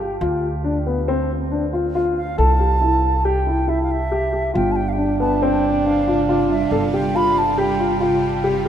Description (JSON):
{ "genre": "contemporary instrumental, chamber music in an uneven meter", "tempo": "139 BPM", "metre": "5/4", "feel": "straight", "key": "unclear", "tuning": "A4 = 440 Hz", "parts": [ { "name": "dark baby grand piano", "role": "arpeggios", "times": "0.0-8.7 s", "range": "B3 to A4", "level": "-21 LUFS", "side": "left 2 dB", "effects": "none" }, { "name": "upright bass", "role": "bass", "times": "0.0-8.7 s", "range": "G1 to D2", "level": "-23 LUFS", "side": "right 1 dB", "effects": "none" }, { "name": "wooden flute", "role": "melody", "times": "2.2-8.6 s", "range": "E5 to B5", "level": "-23 LUFS", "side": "right 1 dB", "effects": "none" }, { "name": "warm French horn", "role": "second line", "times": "4.5-8.6 s", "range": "D4", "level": "-22 LUFS", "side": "right 4 dB", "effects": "none" }, { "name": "shimmering ambient pad", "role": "sustained chords", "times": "5.5-8.7 s", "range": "C3 to F4", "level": "-26 LUFS", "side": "right 3 dB", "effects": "chorus, built-in reverb" } ], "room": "wet cathedral reverb, RT60 6.6 s", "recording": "in a vast, echoing space", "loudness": "-17 LUFS", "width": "side -9 dB against mid", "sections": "0.0-8.7 A section", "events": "none", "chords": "0.2 Dm; 2.4 C; 4.5 G7sus4" }